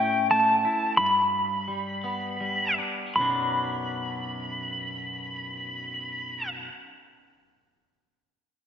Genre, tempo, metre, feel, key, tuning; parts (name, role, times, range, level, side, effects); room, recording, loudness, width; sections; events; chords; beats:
post-rock; 75-93 BPM; 3/4; straight; B minor; A4 = 440 Hz
clean lap steel guitar; melody; 0.0-6.5 s; G5 to B5; -25 LUFS; equal; slapback echo
twangy electric guitar; arpeggios; 0.0-6.7 s; B1 to E4; -33 LUFS; left 1 dB; slapback echo
wet lush hall reverb, RT60 2.0 s; big arena sound, nothing above 8.0 kHz; -24 LUFS; side -8 dB against mid
0.0-3.2 A section; 3.2-8.0 B section
slowing down 0.0-3.2
0.0 A; 1.0 G; 3.2 Bm
0.31 | 0.98 1.67 2.40 | 3.17 3.97 4.76 | 5.56 6.36